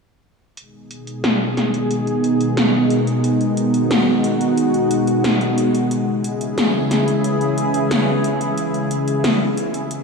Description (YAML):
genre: synthwave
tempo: 90 BPM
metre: 4/4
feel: straight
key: G# minor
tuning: A4 = 441 Hz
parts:
  - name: lush unison pad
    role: sustained chords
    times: 1.1-10.0 s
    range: B2 to G#4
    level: -17 LUFS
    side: equal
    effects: chorus, shimmer reverb
  - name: 80s electronic pad drums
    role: drums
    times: 0.6-10.0 s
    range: hi-hat, snare drum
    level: -22 LUFS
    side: equal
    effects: low-pass filter on hats, low-pass filter on snare
room: wet plate reverb, RT60 2.8 s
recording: dreamy mix soaked in reverb, small room ambience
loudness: -16 LUFS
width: side -4 dB against mid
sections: 0.6-10.0 A section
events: filter sweep on analog synth pad 0.6-10.0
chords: 0.6 G#m; 5.9 C#m